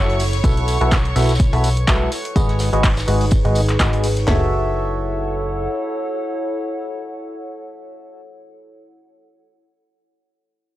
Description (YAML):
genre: piano house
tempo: 125 BPM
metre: 4/4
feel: swing 55% on 16ths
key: F# dorian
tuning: A4 = 440 Hz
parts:
  - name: rich studio violin section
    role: sustained chords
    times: 0.0-4.3 s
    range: C#5 to C#6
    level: -31 LUFS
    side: equal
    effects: sidechain pumping
  - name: percussive organ stab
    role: riff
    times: 0.0-8.2 s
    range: F#3 to E5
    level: -24 LUFS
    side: equal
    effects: chorus, sidechain pumping, analog delay
  - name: plucky analog bass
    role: bass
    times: 0.0-5.7 s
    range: F#1 to B1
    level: -19 LUFS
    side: equal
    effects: sidechain pumping
  - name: warbly tape-like pad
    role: texture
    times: 0.1-8.4 s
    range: D#4 to F#5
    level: -26 LUFS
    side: equal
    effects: chorus, built-in reverb, sidechain pumping
  - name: loose indie drum kit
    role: drums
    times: 0.1-4.3 s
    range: hi-hat, snare drum, tambourine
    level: -33 LUFS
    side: left 1 dB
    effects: sidechain pumping on hats, high-pass filter on hats, high-pass filter on snare, sidechain pumping on perc, high-pass filter on perc, high-pass filter on room
  - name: punchy analog drum machine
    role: drums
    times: 0.2-4.3 s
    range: handclaps, hi-hat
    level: -25 LUFS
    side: equal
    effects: overdrive
  - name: house drum kit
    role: drums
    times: 0.4-4.4 s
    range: handclaps, kick drum, snare drum, toms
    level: -18 LUFS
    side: equal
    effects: none
room: small room reverb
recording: dry, gritty hardware recording, transformer saturation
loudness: -16 LUFS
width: side -15 dB against mid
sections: 0.0-4.3 A section; 4.3-8.1 B section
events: none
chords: 0.4 B7sus4; 2.1 G#m7; 4.3 F#m7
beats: | 0.44 0.92 1.40 1.88 | 2.36 2.84 3.32 3.80 | 4.28 4.76 5.24 5.72 | 6.20 6.68 7.16 7.64